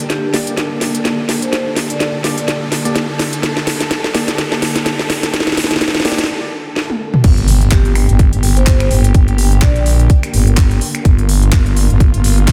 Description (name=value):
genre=bass house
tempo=126 BPM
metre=4/4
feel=swing 57% on 16ths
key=G minor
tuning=A4 = 442 Hz
part: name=dark studio string section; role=sustained chords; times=0.0-12.5 s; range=D3 to A4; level=-25 LUFS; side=equal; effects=sidechain pumping, low-pass filter
part: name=garage drum kit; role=drums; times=0.0-12.5 s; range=crash cymbal, finger snaps, handclaps, hi-hat, snare drum, toms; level=-20 LUFS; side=equal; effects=none
part: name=riser and impact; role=sound effects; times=0.0-9.1 s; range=none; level=-26 LUFS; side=equal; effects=none
part: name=granular cloud pad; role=texture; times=0.0-12.5 s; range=Bb3 to G5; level=-34 LUFS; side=equal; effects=none
part: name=vibraphone with hard mallets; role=melody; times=0.1-2.6, 7.7-10.0 s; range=G4 to D5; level=-27 LUFS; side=equal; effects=digital delay
part: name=percussive organ stab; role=stabs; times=0.3-6.2 s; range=Bb3 to D5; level=-27 LUFS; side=equal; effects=chorus, sidechain pumping, digital delay
part: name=growling FM bass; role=bass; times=7.2-12.5 s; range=G1 to Bb1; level=-14 LUFS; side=equal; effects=overdrive, sidechain pumping
part: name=electronic kick drum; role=drums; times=7.2-12.5 s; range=none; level=-14 LUFS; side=equal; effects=none
room=light reverb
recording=none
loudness=-14 LUFS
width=mono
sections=0.0-7.2 A section; 7.2-12.5 B section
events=build-up 0.0-7.2; drum fill 0.0-6.3, 6.8-7.2; riser 0.0-6.3; break 6.3-7.2; drop 7.2-12.5; impact 7.2-9.1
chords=0.0 Gm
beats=0.10 0.57 1.05 | 1.53 2.00 2.48 2.96 | 3.43 3.91 4.38 4.86 | 5.34 5.81 6.29 6.76 | 7.24 7.72 8.19 8.67 | 9.15 9.62 10.10 10.57 | 11.05 11.53 12.00 12.48